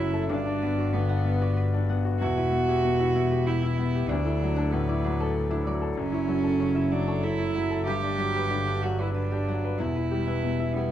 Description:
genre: neoclassical piano and strings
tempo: 94 BPM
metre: 3/4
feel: rubato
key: unclear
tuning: A4 = 440 Hz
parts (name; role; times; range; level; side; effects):
- warm cello; second line; 0.0-10.9 s; B3 to G4; -29 LUFS; right 4 dB; none
- bright grand piano; accompaniment; 0.0-10.9 s; D2 to B4; -29 LUFS; left 5 dB; none
- Celtic harp; arpeggios; 0.0-10.9 s; D4 to F#5; -35 LUFS; right 3 dB; tape echo
- dark double bass; bass; 0.0-10.9 s; E1 to D2; -28 LUFS; equal; none
room: light reverb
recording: dark, warm production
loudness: -24 LUFS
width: side -11 dB against mid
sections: 0.0-10.9 A section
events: none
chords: 0.3 Gmaj7; 2.2 Em; 4.1 Dadd9; 6.0 F#m7; 7.9 Gmaj7; 9.8 Em

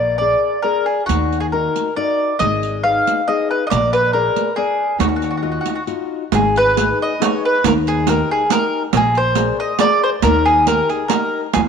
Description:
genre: italian folk, Italian serenade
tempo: 137 BPM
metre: 3/4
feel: rubato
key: Eb harmonic minor, G# harmonic minor from 6.3 s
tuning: A4 = 441 Hz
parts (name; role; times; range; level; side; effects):
- mandolin; melody; 0.0-11.6 s; Gb4 to F5; -17 LUFS; equal; none
- nylon-string guitar; accompaniment; 0.0-11.7 s; Eb3 to D5; -22 LUFS; left 11 dB; none
- upright bass; bass; 0.0-11.7 s; Ab1 to E2; -22 LUFS; right 1 dB; none
- riq; percussion; 1.1-11.7 s; none; -21 LUFS; right 16 dB; none
room: moderate plate reverb, RT60 2.7 s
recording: 1960s-style stereo with parts hard left and right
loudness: -15 LUFS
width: side -6 dB against mid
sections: 0.0-6.3 A section; 6.3-11.7 B section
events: none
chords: 0.0 Bb7; 1.1 Ebm; 2.4 Abm; 3.7 Bb7; 5.0 Ebmadd9; 6.3 G#m; 7.6 D#; 8.9 A#7; 10.2 D#

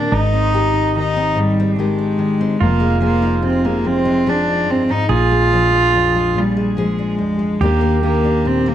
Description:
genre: acoustic folk-pop ballad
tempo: 48 BPM (dotted quarters)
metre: 6/8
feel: straight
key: unclear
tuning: A4 = 440 Hz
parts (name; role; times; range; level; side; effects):
- rich cello; melody; 0.0-8.7 s; G3 to F4; -17 LUFS; equal; slapback echo
- pedal steel guitar; second line; 0.0-8.7 s; D4 to Ab4; -24 LUFS; right 9 dB; none
- fingerpicked steel-string acoustic guitar; accompaniment; 0.0-8.7 s; Eb2 to Ab4; -20 LUFS; left 4 dB; none
- woody fretless electric bass; bass; 0.0-8.7 s; F1 to Eb2; -21 LUFS; equal; none
room: little or no reverb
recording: dry, close 1970s-style studio recording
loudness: -14 LUFS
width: side -11 dB against mid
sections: 0.0-8.7 A section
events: none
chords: 0.1 Abmaj7; 2.6 Fm7; 5.1 Bb7; 7.6 Ebmaj7

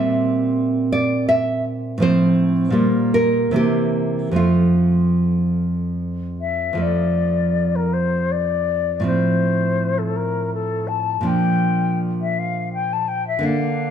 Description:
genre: romantic duo for flute and classical guitar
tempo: 71-86 BPM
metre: 3/4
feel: rubato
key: F major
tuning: A4 = 440 Hz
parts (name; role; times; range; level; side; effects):
- nylon-string guitar; accompaniment; 0.0-13.9 s; F2 to E5; -18 LUFS; right 1 dB; none
- concert flute; melody; 6.4-13.9 s; A4 to A5; -22 LUFS; left 7 dB; none
room: wet recital hall reverb, RT60 1.4 s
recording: none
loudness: -17 LUFS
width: side -8 dB against mid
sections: 0.0-6.8 A section; 6.8-13.9 A section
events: none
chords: 0.0 C7/Bb; 2.0 F/A; 2.8 Gm/Bb; 3.5 C7; 4.4 F; 9.1 F/A; 11.3 Bb

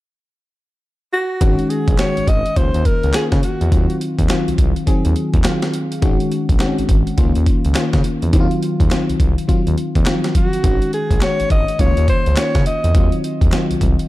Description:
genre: R&B, new jack swing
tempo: 104 BPM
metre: 4/4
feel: swing 62% on 16ths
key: Eb dorian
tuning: A4 = 443 Hz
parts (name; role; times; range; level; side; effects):
- breathy alto saxophone; melody; 1.1-4.0, 10.4-13.2 s; Gb4 to Eb5; -21 LUFS; equal; none
- mellow FM electric piano; accompaniment; 1.4-14.1 s; Eb3 to F5; -20 LUFS; left 1 dB; chorus
- smooth synth bass; bass; 1.4-14.0 s; Ab1 to Db3; -18 LUFS; equal; none
- breakbeat sampler-style drum kit; drums; 1.4-14.1 s; handclaps, hi-hat, kick drum, snare drum; -17 LUFS; equal; none
room: little or no reverb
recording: dark, warm production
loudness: -14 LUFS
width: side -17 dB against mid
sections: 0.0-1.4 A section; 1.4-14.1 B section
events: FM electric piano fill 5.2-6.0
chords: 0.0 N.C.; 1.4 Ab7sus4; 2.6 Db69; 3.7 Ebm69; 6.0 Ab7sus4; 7.2 Db69; 8.3 Ebm69; 10.6 Ab7sus4; 11.8 Db69; 12.9 Ebm69

